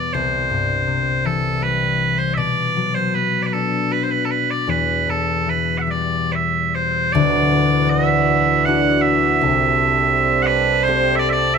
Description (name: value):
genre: celtic folk, Celtic slow air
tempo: 68-86 BPM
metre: 3/4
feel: rubato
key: unclear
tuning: A4 = 440 Hz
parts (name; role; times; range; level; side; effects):
- loud bright bagpipes; melody; 0.0-11.6 s; A4 to F#5; -18 LUFS; right 4 dB; none
- concert harp; accompaniment; 0.0-11.6 s; D1 to G4; -20 LUFS; left 5 dB; none
- pedal harmonium; sustained chords; 7.2-11.6 s; C3 to A4; -21 LUFS; right 6 dB; none
room: light reverb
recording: close, detailed microphones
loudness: -16 LUFS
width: side -6 dB against mid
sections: 0.0-7.1 A section; 7.1-11.6 B section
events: none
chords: 0.1 C; 2.4 Bm; 4.7 Em; 7.1 Dadd9; 9.4 Am7/C